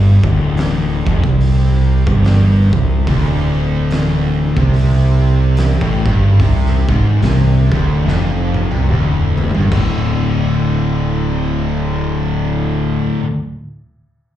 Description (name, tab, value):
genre	stoner and doom metal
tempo	72 BPM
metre	4/4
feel	swing 59% on 8ths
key	D minor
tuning	A4 = 440 Hz
part	thick fuzz guitar	riff	0.0-13.2 s	D2 to D3	-18 LUFS	left 4 dB	distortion, slapback echo
part	thick fuzz guitar	riff	0.0-13.2 s	D2 to D3	-19 LUFS	right 6 dB	distortion, slapback echo
part	fuzz fingered electric bass	bass	0.0-13.0 s	D1 to C2	-16 LUFS	equal	overdrive
part	oversized low-tuned drum kit	drums	0.2-9.9 s	crash cymbal, hi-hat, kick drum, snare drum, toms	-20 LUFS	equal	none
part	overdriven electric guitar	riff	3.1-13.2 s	D2 to D3	-23 LUFS	left 1 dB	slapback echo
room	light reverb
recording	live gig heard through the venue's PA, club reverb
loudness	-12 LUFS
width	side -12 dB against mid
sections	0.0-9.7 A section; 9.7-13.0 B section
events	drum fill 8.1-9.7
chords	0.0 Dm; 9.7 D5